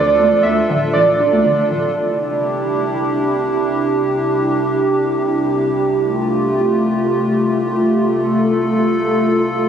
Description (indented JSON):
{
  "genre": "IDM",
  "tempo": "free time",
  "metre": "none",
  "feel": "none",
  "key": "unclear",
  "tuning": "A4 = 440 Hz",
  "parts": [
    { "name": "warbly lo-fi synth keys", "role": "melody", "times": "0.0-1.7 s", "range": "D5 to E5", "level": "-16 LUFS", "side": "right 3 dB", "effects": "chorus, ping-pong delay" },
    { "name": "hollow soft pad", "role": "sustained chords", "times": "0.0-9.7 s", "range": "C2 to A4", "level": "-16 LUFS", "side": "equal", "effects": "chorus" },
    { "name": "warbly dusty pluck", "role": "arpeggios", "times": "0.0-1.8 s", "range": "D3 to D4", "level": "-22 LUFS", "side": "equal", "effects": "lush chorus, ping-pong delay" },
    { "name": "round analog bass", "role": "bass", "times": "0.0-1.9 s", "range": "D1 to D2", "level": "-27 LUFS", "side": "left 1 dB", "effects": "tube saturation" }
  ],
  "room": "wet huge ambient reverb, RT60 4.7 s",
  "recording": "recorded on a phone in the room, club reverb, compression",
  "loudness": "-14 LUFS",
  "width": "side -8 dB against mid",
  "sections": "0.0-2.0 A section; 2.0-9.7 B section",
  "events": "none",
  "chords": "0.0 Dm; 2.0 Cadd9; 6.0 Fadd9/C"
}